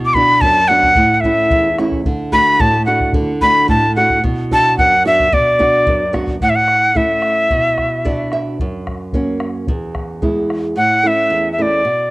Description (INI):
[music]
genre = andean folk, Andean ensemble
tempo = 110 BPM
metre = 2/4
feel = straight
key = unclear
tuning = A4 = 440 Hz
[part]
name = nylon-string guitar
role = accompaniment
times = 0.0-12.1 s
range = E2 to E5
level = -18 LUFS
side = right 1 dB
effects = cassette tape
[part]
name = breathy bright quena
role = melody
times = 0.1-8.3, 10.8-12.1 s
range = D5 to D6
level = -12 LUFS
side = equal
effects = cassette tape
[part]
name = bombo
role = percussion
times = 0.1-10.6 s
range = none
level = -22 LUFS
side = equal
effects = none
[sound]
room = studio ambience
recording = home recording on cassette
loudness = -12 LUFS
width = side -20 dB against mid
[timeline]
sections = 0.0-6.4 A section; 6.4-10.8 B section; 10.8-12.1 C section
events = nylon-string guitar fill 7.8-8.6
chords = 0.0 Bm; 1.0 A; 2.0 D; 4.2 Bm; 6.4 A; 7.5 Bm; 8.6 F#; 9.7 E; 10.8 A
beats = 0.41 | 0.96 1.50 | 2.05 2.59 | 3.14 3.68 | 4.23 4.77 | 5.32 5.86 | 6.41 6.95 | 7.50 8.04 | 8.59 9.13 | 9.68 10.22 | 10.77 11.31 | 11.86